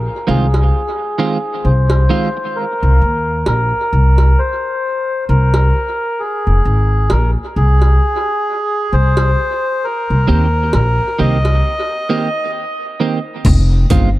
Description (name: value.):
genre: dub reggae.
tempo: 66 BPM.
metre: 4/4.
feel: swing 59% on 16ths.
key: F minor.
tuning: A4 = 441 Hz.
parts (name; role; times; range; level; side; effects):
melodica; melody; 0.0-12.5 s; Ab4 to Eb5; -18 LUFS; equal; low-pass filter, dub echo.
upright bass; bass; 0.0-14.2 s; F1 to Eb2; -12 LUFS; equal; none.
clean electric guitar; accompaniment; 0.3-2.4, 10.3-14.1 s; Eb3 to G4; -20 LUFS; right 4 dB; analog chorus, dub echo.
cowbell; percussion; 0.5-11.6 s; none; -25 LUFS; right 2 dB; dub echo.
breakbeat sampler-style drum kit; drums; 13.4-14.2 s; crash cymbal, hi-hat, kick drum; -14 LUFS; equal; none.
room: light reverb, studio ambience.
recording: echo-heavy mix.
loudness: -13 LUFS.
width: side -17 dB against mid.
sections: 0.0-13.4 A section.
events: filter sweep 0.0-13.4; break 12.5-13.4; part muted 13.4-14.2.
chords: 0.0 Fm7; 2.5 Cm7; 6.2 Fm (rootless); 9.8 Cm7; 13.4 Fm7.